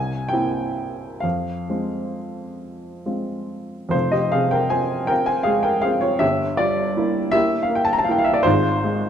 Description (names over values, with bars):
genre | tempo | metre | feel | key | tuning
classical, romantic nocturne for solo piano | 43-54 BPM (dotted quarters) | 6/8 | rubato | F minor | A4 = 439 Hz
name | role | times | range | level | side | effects
warm upright piano | solo | 0.0-9.1 s | F1 to Bb5 | -19 LUFS | equal | none
room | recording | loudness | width
moderate recital hall reverb, RT60 1.3 s | close, detailed microphones | -18 LUFS | side -8 dB against mid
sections
0.0-3.9 A section; 3.9-9.1 A section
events
none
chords
0.0 C7; 1.2 Fm; 6.2 Edim/G; 8.4 Fm/Ab